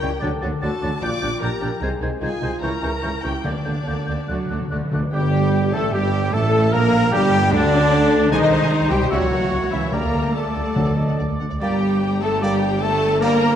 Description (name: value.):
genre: classical, dramatic, fast romantic movement for symphony orchestra.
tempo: 140-153 BPM.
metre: 4/4.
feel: rubato.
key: G minor.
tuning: A4 = 439 Hz.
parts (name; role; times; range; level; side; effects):
warm chamber violin section; melody; 0.0-13.6 s; D4 to D6; -31 LUFS; left 4 dB; none.
clear clarinet; second line; 0.0-13.6 s; A3 to Bb4; -30 LUFS; left 3 dB; none.
hollow concert flute; second line; 0.0-13.6 s; D5 to A6; -30 LUFS; left 2 dB; none.
warm oboe; second line; 0.0-13.4 s; D4 to E5; -32 LUFS; right 1 dB; none.
warm symphonic violin section; second line; 0.0-13.6 s; A3 to Bb5; -32 LUFS; left 5 dB; none.
rich symphonic viola section; accompaniment; 0.0-13.6 s; D4 to D5; -26 LUFS; equal; none.
warm bassoon; accompaniment; 0.0-13.4 s; D3 to Bb3; -29 LUFS; equal; none.
warm French horn section; sustained chords; 0.0-13.6 s; D3 to A#4; -28 LUFS; left 3 dB; none.
mellow tuba; bass; 0.0-13.6 s; G1 to D2; -26 LUFS; right 3 dB; none.
rich symphonic cello section; bass; 0.0-13.6 s; Bb2 to Bb3; -25 LUFS; right 2 dB; none.
warm symphonic double bass section; bass; 0.0-13.6 s; G1 to Bb2; -26 LUFS; right 2 dB; none.
timpani; percussion; 0.2-0.8, 3.4-5.1, 9.9-11.4 s; D3; -26 LUFS; left 1 dB; none.
warm trombone section; sustained chords; 5.1-13.4 s; D3 to Bb3; -29 LUFS; right 2 dB; none.
bright trumpet; stabs; 5.1-13.4 s; D4 to D5; -28 LUFS; right 1 dB; none.
room: wet scoring stage reverb, RT60 1.5 s.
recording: dark, warm production.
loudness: -17 LUFS.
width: side -9 dB against mid.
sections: 0.0-5.1 A section; 5.1-13.6 B section.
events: timpani fill 4.3-5.1.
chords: 0.2 D; 1.0 Gm/Bb; 1.8 Ab/C; 2.6 C#dim7; 3.4 Gm/D; 4.3 D; 5.1 Gsus2; 6.7 Gm; 8.3 Ab/C; 9.1 C#dim7; 9.9 Dsus4; 10.8 D; 11.6 Gm.